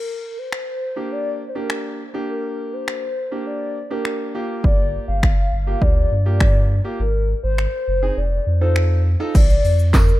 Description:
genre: dance-pop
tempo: 102 BPM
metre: 4/4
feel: straight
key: Bb mixolydian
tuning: A4 = 436 Hz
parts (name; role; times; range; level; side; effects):
- hollow clarinet-like synth lead; melody; 0.0-10.2 s; Bb4 to F5; -25 LUFS; left 2 dB; chorus, digital delay
- house drum kit; drums; 0.5-10.2 s; crash cymbal, finger snaps, handclaps, hi-hat, kick drum, shaker, snare drum; -17 LUFS; equal; overdrive
- clear concert grand piano; accompaniment; 1.0-9.3 s; Bb3 to A4; -28 LUFS; right 2 dB; sidechain pumping
- warm sub bass; bass; 4.6-10.1 s; F1 to G2; -19 LUFS; equal; sidechain pumping
- tambourine; percussion; 9.4-10.1 s; none; -40 LUFS; right 3 dB; none
room: digital ambience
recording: rough home demo mix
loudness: -18 LUFS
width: side -16 dB against mid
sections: 0.0-9.3 A section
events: kick muted 7.0-9.3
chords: 0.0 Bb6; 4.3 Gm7; 7.0 Ab; 8.2 F7; 9.3 Bb

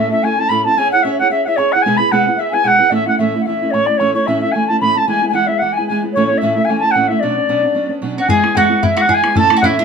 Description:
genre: celtic folk, Celtic reel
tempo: 223 BPM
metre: 4/4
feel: swing 55% on 8ths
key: unclear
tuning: A4 = 442 Hz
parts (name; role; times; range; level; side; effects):
- bright reedy wooden flute; melody; 0.0-9.8 s; C#5 to B5; -15 LUFS; right 2 dB; none
- mellow hollow mid whistle; second line; 0.0-9.8 s; D5 to C#6; -20 LUFS; left 5 dB; none
- fingerpicked steel-string acoustic guitar; accompaniment; 0.0-9.8 s; A2 to C#5; -18 LUFS; right 2 dB; none
- mandolin; second line; 8.2-9.8 s; D4 to A4; -20 LUFS; right 2 dB; none
- bodhran; percussion; 8.3-9.7 s; none; -20 LUFS; left 4 dB; none
room: moderate small room reverb, RT60 0.5 s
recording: minimal, uncompressed stereo recording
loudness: -12 LUFS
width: side -6 dB against mid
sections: 0.0-8.3 A section; 8.3-9.8 B section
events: none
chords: 0.0 A; 0.8 C#m; 1.9 E/B; 2.9 A; 5.1 E; 6.2 A; 7.2 Bmadd9; 8.3 E

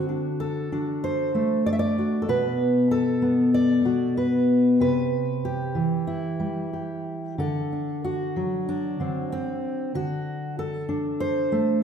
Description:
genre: folk, solo fingerstyle acoustic guitar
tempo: 95 BPM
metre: 4/4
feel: rubato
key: unclear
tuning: A4 = 440 Hz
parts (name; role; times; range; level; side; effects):
- fingerpicked steel-string acoustic guitar; solo; 0.0-11.8 s; B2 to E5; -22 LUFS; equal; none
room: wet recital hall reverb, RT60 1.6 s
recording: recorded in a church or concert hall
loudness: -22 LUFS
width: side -7 dB against mid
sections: 0.0-11.8 A section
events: none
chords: 0.0 D7; 2.3 Bm7; 4.8 Cmaj7; 7.4 D7

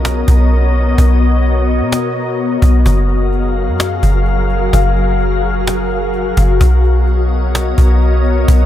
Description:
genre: hip hop, atmospheric cloud-rap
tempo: 128 BPM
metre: 4/4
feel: half-time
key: unclear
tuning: A4 = 441 Hz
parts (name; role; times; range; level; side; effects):
- glassy FM pad; sustained chords; 0.0-8.7 s; F#3 to E#5; -16 LUFS; left 3 dB; ensemble chorus, built-in reverb
- soft 808-style bass; bass; 0.0-8.7 s; F#1 to B2; -12 LUFS; equal; none
- cajon; drums; 0.1-8.6 s; none; -18 LUFS; equal; none
- swell; sound effects; 8.6-8.7 s; none; -34 LUFS; left 1 dB; none
room: digital ambience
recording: none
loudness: -11 LUFS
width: side -12 dB against mid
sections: 0.0-8.7 A section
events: break 0.0-2.9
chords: 0.0 Bmaj9; 2.9 F#maj9; 6.6 Bmaj9

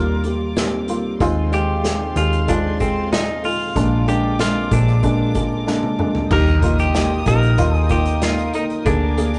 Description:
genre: piano-driven pop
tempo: 94 BPM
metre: 4/4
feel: straight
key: Eb major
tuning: A4 = 440 Hz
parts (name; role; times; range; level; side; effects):
- clean electric guitar; melody; 0.0-9.4 s; C4 to Bb4; -27 LUFS; equal; none
- felt-muted upright piano; accompaniment; 0.0-9.4 s; Bb2 to Bb4; -23 LUFS; equal; none
- dark studio string section; sustained chords; 0.0-9.4 s; F4 to Eb6; -35 LUFS; equal; none
- vintage muted picked electric bass; bass; 0.0-9.4 s; Bb1 to Eb2; -23 LUFS; equal; none
- unplugged drum kit; drums; 0.2-9.4 s; crash cymbal, hi-hat, kick drum, snare drum, toms; -27 LUFS; equal; none
- impact; sound effects; 6.3-8.9 s; none; -30 LUFS; equal; none
room: wet small room ambience, RT60 0.5 s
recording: rough rehearsal-room recording, tube saturation, nothing above 10.3 kHz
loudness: -18 LUFS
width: mono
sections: 0.0-6.3 A section; 6.3-9.4 B section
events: drum fill 5.7-6.3; impact 6.3-8.9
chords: 0.0 Gm7/Eb; 1.2 Fm/Eb; 3.8 Bb7; 6.3 Eb; 8.9 Bb7

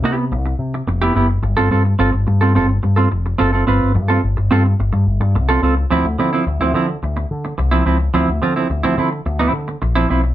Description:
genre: disco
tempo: 107 BPM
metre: 4/4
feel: straight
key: D dorian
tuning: A4 = 440 Hz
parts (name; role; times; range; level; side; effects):
- semi-hollow electric guitar; accompaniment; 0.0-10.3 s; F3 to B4; -17 LUFS; right 3 dB; none
- picked electric bass with an envelope filter; bass; 0.0-10.3 s; F1 to D3; -17 LUFS; left 1 dB; none
room: moderate small room reverb, RT60 0.5 s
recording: band playing live in one room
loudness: -14 LUFS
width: side -13 dB against mid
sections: 0.0-5.9 A section; 5.9-10.3 B section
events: none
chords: 0.0 Cmaj7; 1.4 G9sus4; 5.9 Dm9

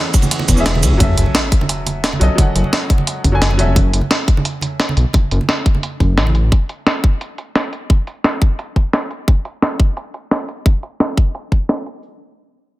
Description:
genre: liquid drum and bass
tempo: 174 BPM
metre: 4/4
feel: straight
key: unclear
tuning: A4 = 440 Hz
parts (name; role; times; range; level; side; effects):
- bright grand piano; accompaniment; 0.0-3.8 s; E3 to G#5; -22 LUFS; equal; dub echo
- airy breathy pad; sustained chords; 0.0-1.0 s; E3 to G#4; -33 LUFS; right 2 dB; none
- breakbeat sampler-style drum kit; drums; 0.1-11.9 s; cabasa, hi-hat, ride cymbal, snare drum; -18 LUFS; equal; low-pass filter on hats, low-pass filter on cymbals, low-pass filter on snare, low-pass filter on perc
- electronic kick drum; drums; 0.1-11.6 s; none; -13 LUFS; equal; none
- congas; percussion; 0.2-6.3 s; none; -23 LUFS; right 3 dB; none
- dark detuned saw bass; bass; 0.5-6.5 s; E1 to C#2; -14 LUFS; equal; none
- sub drop; sound effects; 1.0-2.4 s; none; -24 LUFS; equal; none
room: little or no reverb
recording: dense, heavily limited modern master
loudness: -14 LUFS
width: side -17 dB against mid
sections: 0.0-1.0 A section; 1.0-12.0 B section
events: drop 0.0-1.0; impact 1.0-2.4; filter sweep on drum 1.0-12.0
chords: 0.0 E6; 1.0 F#m7; 7.7 N.C.

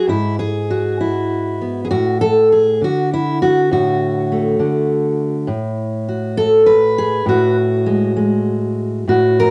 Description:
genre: folk, solo fingerstyle acoustic guitar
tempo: 66 BPM (dotted quarters)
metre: 6/8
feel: rubato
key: unclear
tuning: A4 = 440 Hz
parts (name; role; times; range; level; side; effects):
- fingerpicked steel-string acoustic guitar; solo; 0.0-9.5 s; G#2 to B4; -16 LUFS; equal; none
room: moderate studio reverb, RT60 0.5 s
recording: home recording on cassette, nothing above 10.7 kHz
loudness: -16 LUFS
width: mono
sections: 0.0-1.9 A section; 1.9-9.5 B section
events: none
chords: 0.1 E/G#; 1.9 D/A; 5.5 F#madd9/A

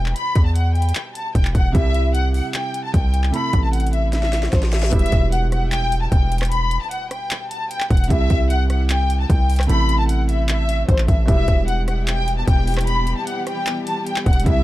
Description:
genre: hip hop, trap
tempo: 151 BPM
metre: 4/4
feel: half-time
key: E minor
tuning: A4 = 443 Hz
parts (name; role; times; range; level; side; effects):
- warm studio violin section; melody; 0.0-14.6 s; C5 to B5; -24 LUFS; left 2 dB; tape echo
- clear concert grand piano; accompaniment; 0.0-14.6 s; B2 to A4; -28 LUFS; right 4 dB; none
- hard-hitting 808-style bass; bass; 0.0-14.6 s; E1 to E2; -19 LUFS; equal; none
- trap drum kit; drums; 0.1-14.6 s; handclaps, hi-hat, kick drum, rim click, snare drum; -20 LUFS; equal; none
- reverse cymbal and impact; sound effects; 4.3-6.5 s; none; -34 LUFS; left 1 dB; none
- dark chamber string section; sustained chords; 11.3-14.6 s; C3 to G4; -28 LUFS; left 1 dB; none
room: small room ambience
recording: dark, warm production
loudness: -16 LUFS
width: side -16 dB against mid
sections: 0.0-4.9 A section; 4.9-14.6 B section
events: drum fill 4.1-4.9; reverse cymbal 4.3-4.9; impact 4.9-6.5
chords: 0.0 Em; 1.7 C; 3.3 Am; 4.9 Em; 8.1 C; 9.7 Am; 11.3 Em

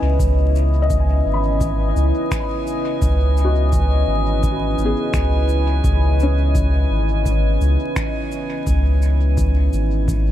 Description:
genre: ambient dub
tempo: 85 BPM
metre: 4/4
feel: straight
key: C# minor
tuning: A4 = 440 Hz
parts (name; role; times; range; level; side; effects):
- deep dark ambient pad; sustained chords; 0.0-10.3 s; C#4 to D#5; -23 LUFS; equal; chorus, built-in reverb
- felt-muted upright piano; arpeggios; 0.0-10.3 s; B3 to B5; -29 LUFS; left 3 dB; vintage 12-bit sampler grit, dub echo
- round analog bass; bass; 0.0-10.3 s; G#1 to C#2; -17 LUFS; equal; none
- electronic cabasa and finger snaps; drums; 0.2-10.2 s; none; -34 LUFS; left 1 dB; dub echo
- electronic kick drum; drums; 0.2-10.2 s; none; -23 LUFS; equal; none
- drifting glass-harmonics texture; texture; 1.1-10.3 s; G#5; -31 LUFS; right 4 dB; chorus, built-in reverb
room: little or no reverb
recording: vinyl crackle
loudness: -16 LUFS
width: side -12 dB against mid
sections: 0.0-10.3 A section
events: none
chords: 0.0 C#m9

